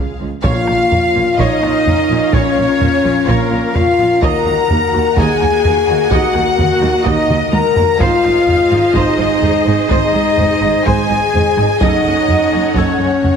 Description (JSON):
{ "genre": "cinematic, epic orchestral film score", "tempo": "127 BPM", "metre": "4/4", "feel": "straight", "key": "Bb minor", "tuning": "A4 = 440 Hz", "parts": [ { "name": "clear symphonic violin section", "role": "melody", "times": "0.0-13.4 s", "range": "Bb4 to Bb5", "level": "-25 LUFS", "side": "left 4 dB", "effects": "none" }, { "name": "rich chamber violin section", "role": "second line", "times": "0.0-13.4 s", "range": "Ab4 to Bb5", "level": "-22 LUFS", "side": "left 2 dB", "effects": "none" }, { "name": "warm symphonic viola section", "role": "accompaniment", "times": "0.0-13.4 s", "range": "F3 to Gb5", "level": "-24 LUFS", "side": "right 2 dB", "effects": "none" }, { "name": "dark French horn section", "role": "sustained chords", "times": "0.0-13.4 s", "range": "F3 to Bb4", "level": "-15 LUFS", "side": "left 3 dB", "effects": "none" }, { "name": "clear symphonic cello section", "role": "bass", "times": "0.0-13.3 s", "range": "Db2 to Bb2", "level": "-22 LUFS", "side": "right 3 dB", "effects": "none" }, { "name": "warm chamber double bass section", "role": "bass", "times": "0.0-13.3 s", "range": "Gb1 to Eb2", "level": "-21 LUFS", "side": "right 4 dB", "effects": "none" }, { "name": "silver concert flute", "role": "second line", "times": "0.4-13.4 s", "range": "Bb4 to Bb5", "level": "-20 LUFS", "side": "equal", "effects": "none" }, { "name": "rich symphonic string section", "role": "sustained chords", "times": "0.4-13.4 s", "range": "Ab3 to Gb5", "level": "-24 LUFS", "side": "right 1 dB", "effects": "none" }, { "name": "solo taiko drums", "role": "drums", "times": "0.4-13.4 s", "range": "none", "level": "-20 LUFS", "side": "equal", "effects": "none" }, { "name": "timpani", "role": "percussion", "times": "0.5-1.1 s", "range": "Bb2", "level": "-23 LUFS", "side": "left 1 dB", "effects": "none" } ], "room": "wet scoring stage reverb, RT60 1.9 s", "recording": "heavily compressed radio sound", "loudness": "-11 LUFS", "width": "side -7 dB against mid", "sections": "0.4-13.4 A section", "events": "drum fill 7.3-8.0", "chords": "0.4 Bbm; 4.2 Ebm; 8.0 Ab; 11.8 Gbm", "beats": "| 0.44 0.92 1.39 1.86 | 2.34 2.81 3.28 3.75 | 4.23 4.71 5.18 5.65 | 6.12 6.59 7.06 7.54 | 8.01 8.48 8.96 9.43 | 9.90 10.38 10.86 11.34 | 11.81 12.29 12.76 13.24" }